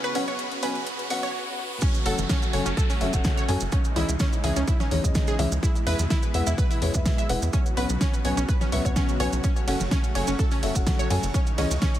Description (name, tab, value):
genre	progressive house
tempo	126 BPM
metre	4/4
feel	straight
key	unclear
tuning	A4 = 440 Hz
part	supersaw pad	sustained chords	0.0-12.0 s	B2 to B4	-34 LUFS	right 1 dB	sidechain pumping
part	wide unison pluck	arpeggios	0.0-11.9 s	C#4 to C#6	-31 LUFS	right 2 dB	sidechain pumping, ping-pong delay
part	deep house drum kit	drums	0.0-12.0 s	hi-hat, ride cymbal, snare drum	-32 LUFS	equal	none
part	riser, swell and downlifter	sound effects	0.0-5.6 s	none	-36 LUFS	right 1 dB	none
part	backwards swelling texture	texture	0.0-1.3, 10.1-12.0 s	C#5 to C#6	-43 LUFS	right 1 dB	none
part	felt-muted upright piano	stabs	0.2-11.6 s	B2 to G#5	-30 LUFS	left 3 dB	sidechain pumping, ping-pong delay
part	electronic kick drum	drums	1.8-11.9 s	none	-24 LUFS	equal	overdrive
part	maracas	percussion	1.8-12.0 s	none	-36 LUFS	right 4 dB	none
part	tight sequencer bass	bass	2.1-11.8 s	E1 to F#2	-27 LUFS	equal	sidechain pumping
room	light reverb, digital ambience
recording	high-pass filter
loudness	-22 LUFS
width	side -12 dB against mid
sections	0.0-1.8 A section; 1.8-12.0 B section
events	build-up 0.0-1.8; riser 0.0-1.8; swell 0.9-1.8; break 1.3-1.8; drop 1.8-12.0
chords	0.0 Bsus2; 1.8 F#m; 3.7 C#madd9; 5.6 E; 7.5 Bsus2; 9.4 F#m; 11.3 C#madd9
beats	0.39 0.87 1.34 | 1.82 2.29 2.77 3.25 | 3.72 4.20 4.68 5.15 | 5.63 6.11 6.58 7.06 | 7.53 8.01 8.49 8.96 | 9.44 9.91 10.39 10.87 | 11.34 11.82